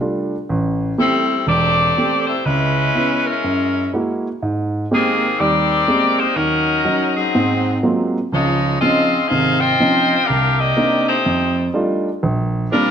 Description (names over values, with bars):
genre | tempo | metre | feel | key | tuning
jazz | 123 BPM | 4/4 | swing 66% on 8ths | unclear | A4 = 442 Hz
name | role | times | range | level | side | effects
warm grand piano | accompaniment | 0.0-12.9 s | E1 to G4 | -18 LUFS | right 2 dB | none
bright saxophone section | melody | 1.0-12.9 s | Eb3 to G5 | -17 LUFS | left 2 dB | none
room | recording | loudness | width
moderate large studio reverb, RT60 1.3 s | close, detailed microphones | -15 LUFS | side -8 dB against mid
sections
0.5-12.9 A section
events
none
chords
0.5 Am7; 2.4 Dbm7; 3.4 Gb9; 4.4 Abmaj9; 6.4 Ebm7; 7.3 Ab13; 8.3 Dbmaj9; 10.3 Cm9; 11.3 F13; 12.2 Bb69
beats
0.00 | 0.49 0.98 1.47 1.96 | 2.45 2.94 3.43 3.92 | 4.41 4.89 5.38 5.87 | 6.36 6.85 7.34 7.83 | 8.32 8.81 9.30 9.79 | 10.28 10.77 11.25 11.74 | 12.23 12.72